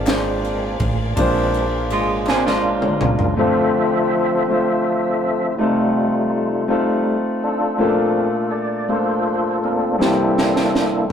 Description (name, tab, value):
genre	slow gospel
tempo	54 BPM (dotted quarters)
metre	6/8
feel	straight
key	unclear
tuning	A4 = 439 Hz
part	warm concert grand piano	accompaniment	0.0-11.1 s	Bb2 to C5	-20 LUFS	left 1 dB	none
part	tonewheel organ	sustained chords	0.0-11.1 s	E3 to E5	-20 LUFS	equal	slow rotary speaker, overdrive, chorus vibrato
part	warm symphonic string section	sustained chords	0.0-3.3 s	Ab4 to F5	-33 LUFS	left 2 dB	none
part	woody fretless electric bass	bass	0.0-3.4 s	Ab1 to Db2	-25 LUFS	right 1 dB	none
part	crisp fusion drum kit	drums	0.1-3.4, 10.0-11.1 s	kick drum, ride cymbal, snare drum, toms	-23 LUFS	right 1 dB	none
part	group handclap	percussion	0.1-2.6 s	none	-32 LUFS	left 2 dB	none
part	clean electric guitar	second line	1.9-3.3 s	Ab3 to Ab4	-22 LUFS	right 2 dB	spring reverb
room	wet small room ambience, RT60 0.5 s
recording	rough rehearsal-room recording, tube saturation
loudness	-16 LUFS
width	side -8 dB against mid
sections	0.0-3.4 A section; 3.4-11.1 B section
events	tonewheel organ solo 0.0-3.4, 3.4-11.1; drum fill 2.3-3.4, 10.0-11.1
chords	0.0 Bb7; 3.4 Dm7; 5.6 F7/C; 6.7 F7; 7.8 Bbmaj7; 10.0 C7